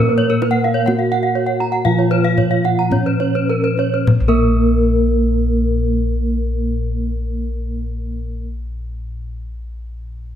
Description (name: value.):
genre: Balinese gamelan.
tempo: 49-69 BPM.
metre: 4/4.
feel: straight.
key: Bb pelog.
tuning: A4 = 437 Hz.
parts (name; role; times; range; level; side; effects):
gamelan-type bronze metallophone; melody; 0.0-8.4 s; Bb3 to Gb4; -22 LUFS; right 1 dB; none.
gamelan-type bronze metallophone; accompaniment; 0.0-8.4 s; F3 to Bb3; -24 LUFS; right 5 dB; none.
gamelan-type bronze metallophone; arpeggios; 0.0-8.4 s; Bb4 to Bb5; -23 LUFS; left 5 dB; none.
gamelan-type bossed gongs; bass; 0.0-8.4 s; Bb1 to Bb4; -20 LUFS; left 2 dB; none.
gamelan-type bronze metallophone; arpeggios; 0.1-8.4 s; Bb4 to Bb5; -23 LUFS; right 5 dB; none.
kendang; percussion; 0.2-4.7 s; none; -20 LUFS; left 2 dB; none.
room: moderate recital hall reverb, RT60 1.5 s.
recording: none.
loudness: -15 LUFS.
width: side -10 dB against mid.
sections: 0.0-4.1 A section; 4.1-9.0 B section.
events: slowing down 0.0-4.1.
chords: none.